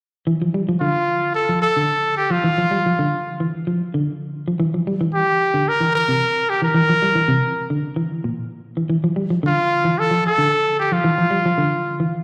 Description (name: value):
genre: afrobeat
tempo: 111 BPM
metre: 4/4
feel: swing 53% on 16ths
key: D minor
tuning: A4 = 440 Hz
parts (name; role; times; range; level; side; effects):
- semi-hollow electric guitar; arpeggios; 0.3-12.1 s; Bb2 to G3; -23 LUFS; equal; slapback echo
- bright trumpet; melody; 0.8-12.0 s; F4 to Bb4; -20 LUFS; equal; slapback echo
room: moderate lush hall reverb, RT60 2.8 s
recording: live gig heard through the venue's PA, recital hall reverb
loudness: -19 LUFS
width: mono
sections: 0.3-12.2 A section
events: none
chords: 0.3 Dmadd9; 4.6 C7; 8.9 Dmadd9